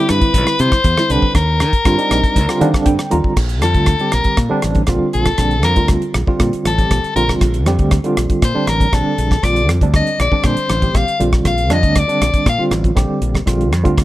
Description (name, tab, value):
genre	electric jazz fusion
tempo	119 BPM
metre	4/4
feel	straight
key	Bb major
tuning	A4 = 440 Hz
part	edgy soprano saxophone	melody	0.0-12.6 s	G4 to F5	-18 LUFS	left 3 dB	none
part	mellow tine electric piano	accompaniment	0.0-14.0 s	D3 to Bb5	-18 LUFS	right 2 dB	medium tremolo
part	modern bright fingered electric bass	bass	0.1-14.0 s	A1 to Eb3	-18 LUFS	equal	none
part	damped 70s drum kit	drums	0.1-14.0 s	crash cymbal, hi-hat, kick drum, rim click	-18 LUFS	equal	none
room	little or no reverb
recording	none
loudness	-13 LUFS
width	side -16 dB against mid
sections	0.0-3.4 A section; 3.4-14.0 B section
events	tine electric piano fill 2.4-3.4; soprano saxophone solo 3.4-14.0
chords	0.0 Cmaj9; 1.4 Ebmaj9; 3.4 Bbadd9